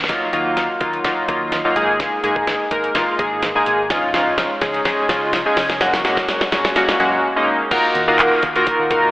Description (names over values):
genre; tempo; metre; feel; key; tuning
dance-pop; 126 BPM; 4/4; straight; Eb minor; A4 = 440 Hz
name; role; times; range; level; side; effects
smooth R&B drum kit; drums; 0.0-9.0 s; crash cymbal, handclaps, hi-hat, kick drum, snare drum; -21 LUFS; equal; slapback echo
chorused retro synth keys; accompaniment; 0.1-9.1 s; Gb3 to Bb4; -16 LUFS; equal; tremolo, sidechain pumping, slapback echo
vintage muted fingered electric bass; bass; 0.3-9.1 s; Ab1 to Gb2; -37 LUFS; equal; sidechain pumping
room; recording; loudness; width
wet lush hall reverb, RT60 1.9 s, digital ambience; big arena sound, telephone sound; -15 LUFS; side -18 dB against mid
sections
0.1-7.7 A section; 7.7-9.1 B section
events
build-up 0.1-7.7; drum fill 0.1-7.2; break 7.2-7.7; drop 7.7-9.1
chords
0.1 Ebmadd9; 1.8 Absus2; 3.9 Dbadd9; 5.8 Gbadd9; 7.7 Ebmadd9